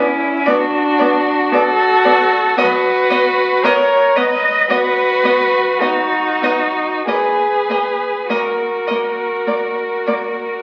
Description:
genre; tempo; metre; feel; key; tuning
classical, slow romantic movement for string quartet; 46-58 BPM; 4/4; rubato; Eb minor; A4 = 441 Hz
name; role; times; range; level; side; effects
rich violin; melody; 0.0-10.6 s; C#4 to B4; -20 LUFS; equal; none
rich violin; second line; 0.0-10.1 s; D5 to D#5; -26 LUFS; equal; none
rich viola; accompaniment; 0.0-10.2 s; Bb3 to B3; -25 LUFS; equal; none
rich cello; bass; 0.0-10.6 s; E4 to D#5; -19 LUFS; equal; none
room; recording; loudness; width
wet recital hall reverb, RT60 1.7 s; very old 78 rpm record, vinyl crackle; -15 LUFS; mono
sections
0.0-10.6 A section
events
none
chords
0.0 Bm7; 2.6 B; 7.1 Ebm/Bb (rootless); 9.5 N.C.

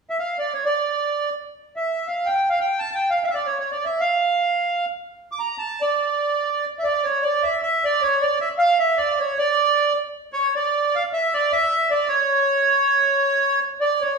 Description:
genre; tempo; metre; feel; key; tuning
balkan folk; 310 BPM (eighths); 9/8; straight; D harmonic minor; A4 = 440 Hz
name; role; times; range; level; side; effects
accordion; solo; 0.1-14.2 s; C#5 to D6; -19 LUFS; right 2 dB; none
room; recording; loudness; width
wet recital hall reverb, RT60 1.3 s; recorded in a church or concert hall, small room ambience; -19 LUFS; side -4 dB against mid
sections
0.0-6.8 A section; 6.8-14.2 B section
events
none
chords
none

